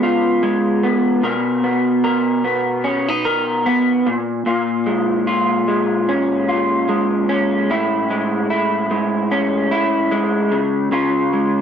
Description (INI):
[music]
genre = indie pop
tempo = 74 BPM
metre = 4/4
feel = swing 60% on 16ths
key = unclear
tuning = A4 = 441 Hz
[part]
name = electric guitar through a small old amp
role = solo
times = 0.0-11.6 s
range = A2 to A#4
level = -16 LUFS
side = equal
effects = analog chorus, vibrato effect, slapback echo
[sound]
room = light reverb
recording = dry, close 1970s-style studio recording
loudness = -16 LUFS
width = side -8 dB against mid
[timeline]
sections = 0.0-11.6 A section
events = none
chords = 0.0 C#7; 1.2 Bmaj7; 4.1 A#m7; 7.7 Amaj7; 10.5 C#